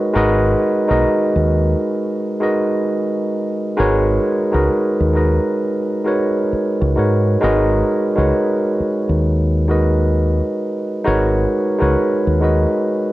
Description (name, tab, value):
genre	R&B, neo-soul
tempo	66 BPM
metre	4/4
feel	swing 64% on 16ths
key	G# minor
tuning	A4 = 440 Hz
part	bright tine electric piano	accompaniment	0.0-13.1 s	G#3 to D#5	-16 LUFS	right 1 dB	cassette tape
part	deep dub fingered electric bass	bass	0.2-12.6 s	G#1 to G#2	-17 LUFS	equal	none
room	light reverb, digital ambience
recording	home recording on cassette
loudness	-15 LUFS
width	side -17 dB against mid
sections	0.0-13.1 A section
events	none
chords	0.0 G#m11